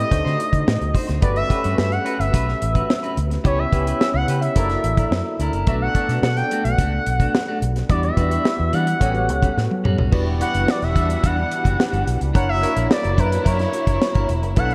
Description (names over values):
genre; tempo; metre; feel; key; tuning
polished 1980s jazz-funk pop; 108 BPM; 4/4; straight; unclear; A4 = 439 Hz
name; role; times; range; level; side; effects
expressive portamento lead; melody; 0.0-14.7 s; B4 to G5; -26 LUFS; equal; chorus
barky tine electric piano; accompaniment; 0.0-14.7 s; A3 to E5; -29 LUFS; equal; overdrive, ensemble chorus
clean electric guitar; riff; 0.0-14.7 s; G3 to C5; -32 LUFS; equal; lush chorus
vintage muted fingered electric bass; bass; 0.0-14.7 s; E1 to E3; -24 LUFS; equal; none
modern studio drum kit; drums; 0.1-14.7 s; crash cymbal, hi-hat, kick drum, snare drum, toms; -24 LUFS; equal; none
warm studio string section; sustained chords; 10.1-14.7 s; E3 to F#5; -33 LUFS; equal; none
room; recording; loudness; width
moderate plate reverb, RT60 2.5 s; dreamy mix soaked in reverb; -20 LUFS; mono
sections
0.0-10.1 A section; 10.1-14.7 B section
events
drum fill 9.6-10.1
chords
0.1 D7b9; 1.2 Gmaj9#11; 3.4 C#m7b5; 4.6 F#7alt; 5.7 Bm7; 7.9 Em9; 9.0 A13; 10.1 Em9; 12.3 F#7b13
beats
0.11 0.67 | 1.22 1.78 2.33 2.89 | 3.45 4.00 4.56 5.12 | 5.67 6.23 6.79 7.34 | 7.90 8.45 9.01 9.57 | 10.12 10.68 11.23 11.79 | 12.35 12.90 13.46 14.02 | 14.57